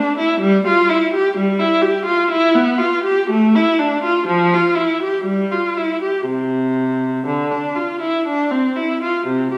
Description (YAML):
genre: classical, baroque-style suite movement for unaccompanied viola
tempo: 61 BPM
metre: 3/4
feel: uneven beats, rubato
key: C major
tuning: A4 = 440 Hz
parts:
  - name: clear viola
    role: solo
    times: 0.0-9.6 s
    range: C3 to G4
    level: -17 LUFS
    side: equal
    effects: none
room: wet recital hall reverb, RT60 1.5 s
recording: heard from further back in the room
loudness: -17 LUFS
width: mono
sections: 0.0-9.3 A section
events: none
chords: none